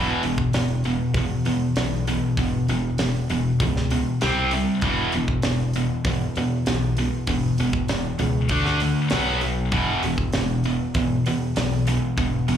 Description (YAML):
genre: hard rock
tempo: 98 BPM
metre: 4/4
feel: straight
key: unclear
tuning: A4 = 440 Hz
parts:
  - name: tight distorted guitar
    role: riff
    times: 0.0-12.6 s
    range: E2 to D4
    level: -22 LUFS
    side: equal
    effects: distortion, slapback echo
  - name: fingered electric bass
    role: bass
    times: 0.0-12.6 s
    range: E1 to E2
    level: -26 LUFS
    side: equal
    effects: none
  - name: tight metal drum kit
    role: drums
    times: 0.2-12.6 s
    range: hi-hat, kick drum, snare drum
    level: -28 LUFS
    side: right 1 dB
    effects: none
room: moderate club reverb, RT60 0.7 s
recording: live gig heard through the venue's PA, club reverb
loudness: -20 LUFS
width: side -9 dB against mid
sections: 0.0-12.6 A section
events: none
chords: 0.0 E5; 4.2 C5; 4.8 E5; 8.5 D5; 9.1 B5; 9.7 E5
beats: 0.54 1.15 1.77 | 2.38 2.99 3.60 4.22 | 4.83 5.44 6.05 6.67 | 7.28 7.89 8.51 9.12 | 9.73 10.35 10.96 11.57 | 12.18